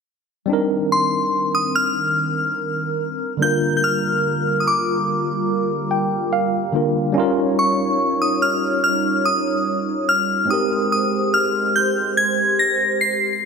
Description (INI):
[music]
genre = R&B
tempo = 72 BPM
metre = 4/4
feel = straight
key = C minor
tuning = A4 = 440 Hz
[part]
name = tine electric piano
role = accompaniment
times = 0.5-13.5 s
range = D3 to G5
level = -22 LUFS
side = equal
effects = overdrive, fast stereo tremolo
[part]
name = hollow soft pad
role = sustained chords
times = 0.5-13.5 s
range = D3 to Db5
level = -24 LUFS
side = right 2 dB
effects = chorus
[part]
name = glassy synth bell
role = melody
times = 0.9-13.5 s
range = C6 to C7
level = -19 LUFS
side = left 1 dB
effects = chorus, ping-pong delay
[sound]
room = moderate lush hall reverb, RT60 2.8 s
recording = none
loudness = -17 LUFS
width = side -5 dB against mid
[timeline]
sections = 0.5-13.5 A section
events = tine electric piano fill 5.5-7.2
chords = 0.5 Cm7; 3.4 Gm7/D; 7.2 Eb7; 10.5 Abmaj7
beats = | 0.49 1.32 2.15 2.99 | 3.82 4.66 5.49 6.32 | 7.16 7.99 8.82 9.65 | 10.49 11.32 12.15 12.99